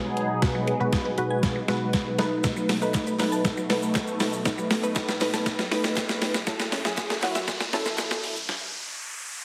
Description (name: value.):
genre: dance-pop.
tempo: 119 BPM.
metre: 4/4.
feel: straight.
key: unclear.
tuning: A4 = 441 Hz.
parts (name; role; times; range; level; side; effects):
funky polysynth comp; accompaniment; 0.0-8.4 s; B2 to B4; -30 LUFS; equal; chorus, sidechain pumping.
sweeping resonant pad; sustained chords; 0.0-8.5 s; F#2 to G#4; -35 LUFS; equal; chorus, sidechain pumping.
crisp 8-bit digital drum machine; drums; 0.2-8.6 s; hi-hat, kick drum, shaker, snare drum; -29 LUFS; equal; none.
mallet-like synth pluck; arpeggios; 0.4-7.8 s; B2 to A5; -37 LUFS; equal; chorus, sidechain pumping, tape echo.
riser; sound effects; 4.2-9.4 s; none; -38 LUFS; equal; none.
group handclap; percussion; 2.9-8.1 s; none; -42 LUFS; equal; none.
room: moderate digital room reverb, RT60 1.1 s, digital ambience.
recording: heavily compressed radio sound, multiband compression, high-pass filter.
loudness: -26 LUFS.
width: mono.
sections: 0.0-9.4 A section.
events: build-up 0.0-9.4; drum fill 0.0-8.5; filter sweep 0.0-9.4; riser 4.4-9.4; stop 8.5-9.4.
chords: 0.0 G#m7/B; 2.2 B7; 6.5 F#m7.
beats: | 0.42 0.93 1.43 1.94 | 2.44 2.94 3.45 3.95 | 4.46 4.96 5.46 5.97 | 6.47 6.98 7.48 7.99 | 8.49 8.99.